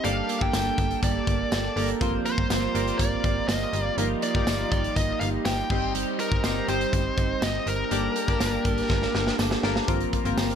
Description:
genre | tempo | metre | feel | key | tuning
1980s-style pop | 122 BPM | 4/4 | straight | G minor | A4 = 440 Hz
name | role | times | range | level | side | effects
bluesy overdriven lead guitar | melody | 0.0-9.4 s | Bb4 to G5 | -30 LUFS | equal | distortion, tape echo
chorused retro synth keys | accompaniment | 0.0-10.6 s | G3 to A5 | -30 LUFS | left 1 dB | none
lush unison pad | sustained chords | 0.0-10.6 s | G3 to Bb4 | -34 LUFS | equal | chorus
twelve-string electric guitar | riff | 0.0-10.6 s | F3 to A4 | -33 LUFS | right 9 dB | wide subtle chorus
slap-like FM bass | bass | 0.0-10.6 s | G1 | -30 LUFS | equal | none
modern studio drum kit | drums | 0.0-10.6 s | crash cymbal, hi-hat, kick drum, snare drum, tambourine | -28 LUFS | equal | none
tambourine | percussion | 0.5-10.5 s | none | -43 LUFS | left 12 dB | none
room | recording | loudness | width
light reverb, small room ambience | none | -23 LUFS | side -8 dB against mid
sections
0.0-9.9 A section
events
drum fill 8.9-9.9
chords
0.0 Gmadd9; 2.0 Fsus4/G; 4.0 Ebadd9/G; 5.7 Cm/G; 7.9 Gmadd9; 9.9 Fsus4/G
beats
| 0.04 0.54 1.03 1.52 | 2.01 2.50 3.00 3.49 | 3.98 4.47 4.96 5.46 | 5.95 6.44 6.93 7.42 | 7.91 8.41 8.90 9.39 | 9.88 10.37

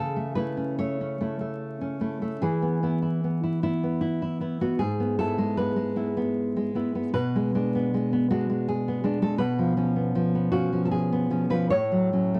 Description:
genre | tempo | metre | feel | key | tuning
romantic piece for solo classical guitar | 77 BPM | 3/4 | uneven beats, rubato | unclear | A4 = 439 Hz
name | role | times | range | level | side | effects
nylon-string guitar | solo | 0.0-12.4 s | G#2 to C#5 | -26 LUFS | equal | none
room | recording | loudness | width
light reverb, studio ambience | dry, close 1970s-style studio recording, vinyl crackle | -26 LUFS | mono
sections
0.0-12.4 A section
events
none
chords
0.0 A/C#; 2.4 E; 4.8 E/G#; 7.1 G#dim/B; 9.4 C#7/B; 11.7 F#m/A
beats
0.79 1.61 | 2.43 3.23 4.03 | 4.80 5.56 6.36 | 7.13 7.91 8.67 | 9.40 10.15 10.93 | 11.72

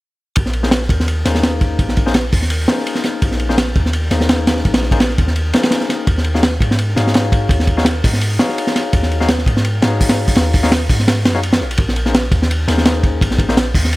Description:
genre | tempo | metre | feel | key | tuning
drum and bass, jungle | 168 BPM | 4/4 | swing 54% on 16ths | Bb minor | A4 = 440 Hz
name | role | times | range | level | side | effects
warm 808-style bass | bass | 0.4-14.0 s | Bb1 to Ab2 | -18 LUFS | equal | tube saturation
crunchy breakbeat drum kit | drums | 0.4-14.0 s | hi-hat, kick drum, ride cymbal, snare drum | -15 LUFS | equal | none
barky tine electric piano | stabs | 0.6-13.6 s | Bb3 to F5 | -22 LUFS | left 4 dB | overdrive, dub echo
room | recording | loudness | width
studio reverb | none | -13 LUFS | side -19 dB against mid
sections
0.4-14.0 A section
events
none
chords
0.4 Bbm11; 6.1 Ebm11; 11.8 Bbm11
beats
| 0.36 0.72 1.07 1.43 | 1.79 2.15 2.50 2.86 | 3.22 3.57 3.93 4.29 | 4.65 5.00 5.36 5.72 | 6.07 6.43 6.79 7.15 | 7.50 7.86 8.22 8.57 | 8.93 9.29 9.65 10.00 | 10.36 10.72 11.07 11.43 | 11.79 12.15 12.50 12.86 | 13.22 13.57 13.93

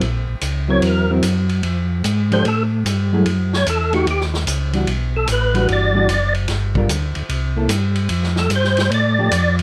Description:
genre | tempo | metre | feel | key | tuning
soul jazz organ trio | 148 BPM | 4/4 | swing 66% on 8ths | unclear | A4 = 441 Hz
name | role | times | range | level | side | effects
tonewheel organ | bass | 0.0-9.6 s | F#1 to A2 | -21 LUFS | equal | chorus vibrato
vintage drum kit | drums | 0.0-9.6 s | hi-hat, kick drum, ride cymbal, snare drum | -28 LUFS | equal | none
percussive tonewheel organ | melody | 0.7-9.6 s | F#4 to D5 | -21 LUFS | equal | slow rotary speaker, overdrive, chorus vibrato
hollow-body jazz guitar | accompaniment | 0.7-9.3 s | E3 to A#4 | -22 LUFS | equal | none
room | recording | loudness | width
light reverb | none | -18 LUFS | mono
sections
0.0-9.6 A section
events
tonewheel organ solo 0.0-9.6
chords
0.0 F#7#11; 1.6 Fadd9; 3.3 F#m7; 4.1 C#dim; 4.9 Em9; 6.5 Gm7; 7.3 C6; 8.1 F69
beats
| 0.02 0.43 0.83 1.24 | 1.64 2.04 2.45 2.85 | 3.26 3.66 4.07 4.47 | 4.87 5.28 5.68 6.09 | 6.49 6.89 7.30 7.70 | 8.11 8.51 8.91 9.32

